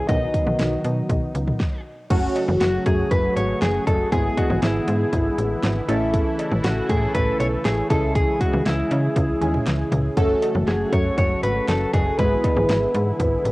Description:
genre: synth-pop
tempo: 119 BPM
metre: 4/4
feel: straight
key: unclear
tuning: A4 = 439 Hz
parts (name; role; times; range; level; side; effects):
- direct-recorded clean electric guitar; melody; 0.0-13.5 s; E4 to D#5; -24 LUFS; left 1 dB; cassette tape, analog delay
- warm analog keys; accompaniment; 0.0-13.5 s; D#3 to A4; -25 LUFS; equal; chorus, phaser
- sweeping resonant pad; sustained chords; 0.0-13.5 s; B2 to A4; -29 LUFS; equal; chorus
- slap-like FM bass; bass; 0.1-13.5 s; F#1 to C#3; -24 LUFS; equal; tube saturation
- pop drum kit; drums; 0.1-13.5 s; cowbell, crash cymbal, hi-hat, kick drum, snare drum, toms; -24 LUFS; equal; cassette tape
room: moderate spring reverb, RT60 2.0 s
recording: home recording on cassette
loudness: -18 LUFS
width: side -20 dB against mid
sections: 0.0-2.1 A section; 2.1-13.5 B section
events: stop 1.6-2.1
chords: 0.1 B; 2.1 F#madd9; 4.1 E7/G#; 5.9 A; 7.9 C#m; 10.2 F#madd9; 12.2 E7/G#

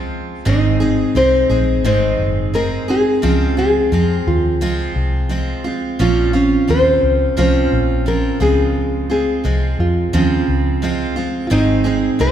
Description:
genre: acoustic pop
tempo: 87 BPM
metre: 4/4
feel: swing 60% on 16ths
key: Db major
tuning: A4 = 441 Hz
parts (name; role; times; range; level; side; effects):
- picked steel-string acoustic guitar; accompaniment; 0.0-12.3 s; Ab2 to Ab4; -18 LUFS; right 3 dB; none
- nylon-string guitar; melody; 0.5-12.3 s; Eb4 to C5; -18 LUFS; left 2 dB; none
- vintage muted fingered electric bass; bass; 0.5-12.3 s; Gb1 to F2; -19 LUFS; equal; none
room: moderate concert hall reverb, RT60 2.4 s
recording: recorded in a church or concert hall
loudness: -14 LUFS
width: side -10 dB against mid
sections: 0.0-12.3 A section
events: none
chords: 0.5 Ab; 3.2 Dbmaj7; 6.0 Bbmadd9; 8.4 Dbmaj7; 11.5 Ab

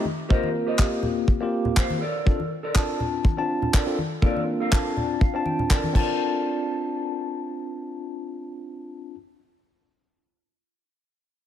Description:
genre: nu-disco, nu disco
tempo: 122 BPM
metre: 4/4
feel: swing 55% on 16ths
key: Bb major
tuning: A4 = 440 Hz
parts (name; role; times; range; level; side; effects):
- tine electric piano; accompaniment; 0.0-9.2 s; Bb3 to A5; -26 LUFS; moving between left 7 dB and right 3 dB; auto-pan, digital delay
- mellow electric guitar; riff; 0.0-9.2 s; G4 to A5; -31 LUFS; right 1 dB; wide subtle chorus, low-pass filter, digital delay
- congas; percussion; 0.1-5.9 s; none; -31 LUFS; left 2 dB; none
- kick drum; drums; 0.3-6.1 s; none; -20 LUFS; equal; none
- damped 70s drum kit; drums; 0.8-6.1 s; crash cymbal, handclaps; -30 LUFS; left 1 dB; none
room: little or no reverb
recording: none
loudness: -22 LUFS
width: side -10 dB against mid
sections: 0.0-6.2 A section; 6.2-10.1 B section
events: filter sweep on clean electric guitar 0.0-6.2; clean electric guitar fill 4.7-6.2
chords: 0.3 Eb6; 2.0 Bbmaj7

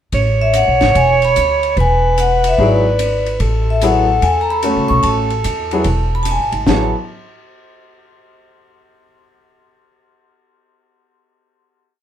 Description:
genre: jazz, small-group swing and bop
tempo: 147 BPM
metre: 4/4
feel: swing 66% on 8ths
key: A major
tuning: A4 = 439 Hz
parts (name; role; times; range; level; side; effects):
- mellow alto saxophone; second line; 0.1-6.9 s; A4 to C#5; -18 LUFS; right 4 dB; none
- upright bass; bass; 0.1-6.9 s; E1 to E2; -17 LUFS; equal; none
- compact cocktail drum kit; drums; 0.1-6.8 s; hi-hat, kick drum, ride cymbal, snare drum, toms; -24 LUFS; left 1 dB; none
- vibraphone with medium hard mallets; melody; 0.4-6.9 s; D5 to C#6; -17 LUFS; left 3 dB; none
- warm grand piano; accompaniment; 2.6-6.9 s; F#3 to A4; -18 LUFS; left 2 dB; none
room: moderate studio reverb, RT60 0.5 s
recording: band playing live in one room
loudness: -12 LUFS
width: side -10 dB against mid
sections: 0.1-6.7 A section; 6.7-8.3 final chord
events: none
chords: 0.1 Aadd9; 1.8 E7; 3.4 Amaj9; 6.7 Amaj7sus2

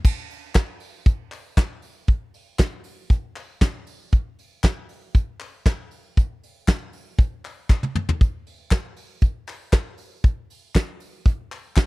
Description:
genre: indie pop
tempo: 118 BPM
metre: 4/4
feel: straight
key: none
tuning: none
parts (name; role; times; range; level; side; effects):
- soft brush drum kit; drums; 0.0-11.9 s; crash cymbal, hi-hat, kick drum, snare drum, toms; -17 LUFS; equal; none
- group handclap; percussion; 0.6-11.9 s; none; -36 LUFS; left 5 dB; none
room: little or no reverb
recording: dry, close 1970s-style studio recording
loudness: -21 LUFS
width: side -23 dB against mid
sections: 0.0-11.9 A section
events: drum fill 7.7-8.2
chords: none

